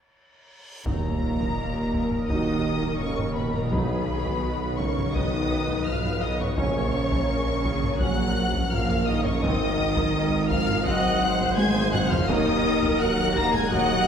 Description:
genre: cinematic, hybrid orchestral and electronic film score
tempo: 84 BPM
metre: 4/4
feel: straight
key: Eb minor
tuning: A4 = 440 Hz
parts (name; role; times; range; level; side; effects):
- reverse cymbal and sub drop; sound effects; 0.6-3.7 s; none; -34 LUFS; equal; none
- warm symphonic violin section; melody; 0.9-14.1 s; Bb5 to Bb6; -31 LUFS; left 3 dB; none
- warm symphonic violin section; second line; 0.9-14.1 s; Bb4 to Bb5; -31 LUFS; left 3 dB; none
- bright trombone section; sustained chords; 0.9-14.0 s; Eb3 to D#4; -35 LUFS; right 2 dB; none
- chorused pulse-width pad; sustained chords; 0.9-14.1 s; Bb2 to Eb5; -34 LUFS; equal; none
- dark French horn section; sustained chords; 0.9-14.1 s; Bb3 to Bb4; -31 LUFS; left 2 dB; none
- clear symphonic double bass section; bass; 0.9-14.1 s; Ab1 to Eb2; -32 LUFS; right 3 dB; none
- saturated sub bass; bass; 0.9-14.1 s; Eb1 to B1; -33 LUFS; equal; none
- warm symphonic cello section; bass; 0.9-14.1 s; Bb2 to Bb3; -31 LUFS; right 2 dB; none
- warm tuba; bass; 0.9-14.1 s; Ab1 to Eb2; -32 LUFS; right 2 dB; none
- taiko ensemble; drums; 0.9-14.1 s; none; -30 LUFS; equal; none
- warm symphonic viola section; accompaniment; 2.3-14.1 s; Gb4 to Eb5; -32 LUFS; right 1 dB; none
room: wet scoring stage reverb, RT60 1.8 s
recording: heard from further back in the room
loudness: -22 LUFS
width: side -7 dB against mid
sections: 0.9-14.1 A section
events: break 0.0-0.9; reverse cymbal 0.6; impact 0.9-3.7; drum fill 11.6-12.3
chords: 0.0 N.C.; 0.9 Ebm; 3.7 B; 6.6 Gb/Bb; 9.4 Ab; 12.3 Ebm

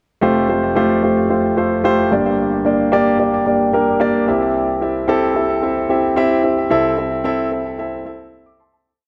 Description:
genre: pop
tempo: 111 BPM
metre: 4/4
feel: straight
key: F major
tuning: A4 = 441 Hz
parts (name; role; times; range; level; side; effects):
- warm grand piano; solo; 0.2-9.0 s; F1 to D6; -17 LUFS; equal; delay
room: moderate lush hall reverb, RT60 2.3 s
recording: none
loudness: -17 LUFS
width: mono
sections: 0.2-8.9 verse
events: fade-out 6.7-8.9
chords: 0.2 Fadd9; 2.1 Gm; 4.3 C; 6.7 Am/C

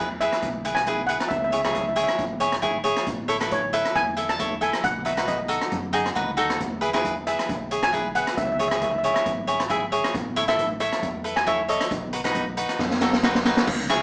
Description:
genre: calypso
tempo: 136 BPM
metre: 4/4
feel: swing 54% on 16ths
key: unclear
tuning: A4 = 440 Hz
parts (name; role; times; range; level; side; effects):
- cavaquinho; accompaniment; 0.0-14.0 s; D#4 to E5; -24 LUFS; equal; none
- fingered electric bass; bass; 0.0-14.0 s; G#1 to F#2; -38 LUFS; equal; none
- steel pan; melody; 0.2-13.2 s; C#5 to A5; -24 LUFS; equal; none
- street-band drum kit; drums; 0.2-14.0 s; crash cymbal, hi-hat, kick drum, rim click, snare drum; -26 LUFS; equal; none
room: wet studio reverb, RT60 0.8 s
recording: band playing live in one room, small speaker sound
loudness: -21 LUFS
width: side -36 dB against mid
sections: 0.0-13.7 A section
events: drum fill 12.8-13.7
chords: 0.0 E; 1.3 C#m; 3.1 A; 4.8 B; 6.6 E; 8.4 C#m; 10.1 A; 11.9 B

